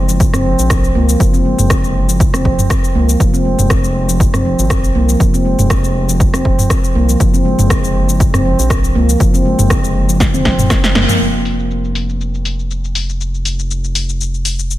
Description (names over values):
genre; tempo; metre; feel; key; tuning
afro house; 120 BPM; 4/4; swing 54% on 16ths; unclear; A4 = 440 Hz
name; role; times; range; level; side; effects
round analog bass; bass; 0.0-14.8 s; F1 to Db2; -17 LUFS; equal; sidechain pumping
handpan; arpeggios; 0.1-11.2 s; F3 to C4; -17 LUFS; equal; sidechain pumping, dub echo
house drum kit; drums; 0.1-14.8 s; hi-hat, rim click, shaker, snare drum, toms; -18 LUFS; equal; low-pass filter on perc, low-pass filter on snare, low-pass filter on toms, low-pass filter on hats
electronic kick drum; drums; 0.2-10.8 s; none; -14 LUFS; equal; none
room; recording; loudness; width
light reverb, digital ambience; none; -11 LUFS; side -15 dB against mid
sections
0.0-11.2 A section; 11.2-14.8 B section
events
drum fill 10.2-11.2; band accent 11.0; filter sweep on drum 11.2-14.8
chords
0.0 Gb; 3.2 Fm; 7.2 Gb; 11.2 N.C.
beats
0.20 0.70 | 1.20 1.70 2.20 2.70 | 3.20 3.70 4.20 4.70 | 5.20 5.70 6.20 6.70 | 7.20 7.70 8.20 8.70 | 9.20 9.70 10.20 10.70 | 11.20 11.70 12.20 12.70 | 13.20 13.70 14.20 14.70